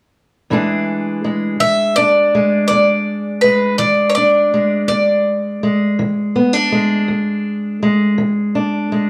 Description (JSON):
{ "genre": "acoustic country blues, solo or duo", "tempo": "55 BPM (dotted quarters)", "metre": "12/8", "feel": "straight", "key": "E mixolydian", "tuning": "A4 = 440 Hz", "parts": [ { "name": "fingerpicked steel-string acoustic guitar", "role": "accompaniment", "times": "0.5-9.1 s", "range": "E2 to G#4", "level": "-19 LUFS", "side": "equal", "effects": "none" }, { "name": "bowl-back mandolin", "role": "melody", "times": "1.6-7.0 s", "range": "B4 to E5", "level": "-16 LUFS", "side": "equal", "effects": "none" } ], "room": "wet studio reverb, RT60 0.7 s", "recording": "heard from further back in the room", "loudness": "-16 LUFS", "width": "mono", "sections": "0.5-9.1 A section", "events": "none", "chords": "0.5 E7", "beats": "| 0.51 1.61 2.70 3.80 | 4.90 6.00 7.10 8.20" }